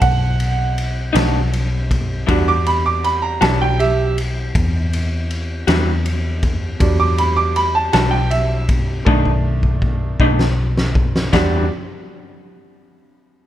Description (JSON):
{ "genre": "slow blues", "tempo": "53 BPM (dotted quarters)", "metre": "12/8", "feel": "straight", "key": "E minor", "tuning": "A4 = 440 Hz", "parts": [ { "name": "bright upright piano", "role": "accompaniment", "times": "0.0-11.7 s", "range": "D#3 to D6", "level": "-20 LUFS", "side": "right 4 dB", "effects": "none" }, { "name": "vintage muted fingered electric bass", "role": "bass", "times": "0.0-11.7 s", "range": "B1 to E2", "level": "-19 LUFS", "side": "left 1 dB", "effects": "none" }, { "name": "raw garage drum kit", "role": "drums", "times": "0.0-11.5 s", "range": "kick drum, ride cymbal, snare drum, splash cymbal", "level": "-21 LUFS", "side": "equal", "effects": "none" }, { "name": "electric guitar through a small old amp", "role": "accompaniment", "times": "1.1-11.6 s", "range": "B2 to F#4", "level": "-21 LUFS", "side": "left 1 dB", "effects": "tremolo" } ], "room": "little or no reverb", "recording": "none", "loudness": "-15 LUFS", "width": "side -12 dB against mid", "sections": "0.0-11.3 A section; 11.3-13.5 B section", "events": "upright piano solo 0.0-11.3; drum fill 9.1-11.3", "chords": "0.0 B5; 2.3 Em9; 9.1 B7#9; 11.3 Em9" }